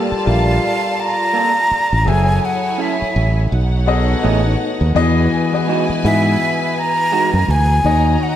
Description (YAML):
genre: lush 1970s-style soul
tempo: 83 BPM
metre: 4/4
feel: swing 58% on 16ths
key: unclear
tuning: A4 = 440 Hz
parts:
  - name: warm studio string section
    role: second line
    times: 0.0-8.4 s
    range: D#4 to Bb5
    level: -23 LUFS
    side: equal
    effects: none
  - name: clear concert grand piano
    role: accompaniment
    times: 0.0-8.4 s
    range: Eb3 to F5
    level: -20 LUFS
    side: left 4 dB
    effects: none
  - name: electric guitar through a small old amp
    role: riff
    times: 0.0-7.3 s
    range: G#3 to A4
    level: -24 LUFS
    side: right 6 dB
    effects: none
  - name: modern bright fingered electric bass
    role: bass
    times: 0.1-8.2 s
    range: F#1 to G#2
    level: -16 LUFS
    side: right 1 dB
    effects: none
  - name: breathy jazz flute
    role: melody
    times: 0.3-8.4 s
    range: E5 to Bb5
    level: -18 LUFS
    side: right 1 dB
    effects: none
room: moderate scoring stage reverb, RT60 1.8 s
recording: dark, warm production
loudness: -13 LUFS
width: side -11 dB against mid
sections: 0.0-8.4 A section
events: none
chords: 0.0 Gm9; 2.1 F#m7; 3.5 B13; 5.0 Emaj9; 7.8 Ebm7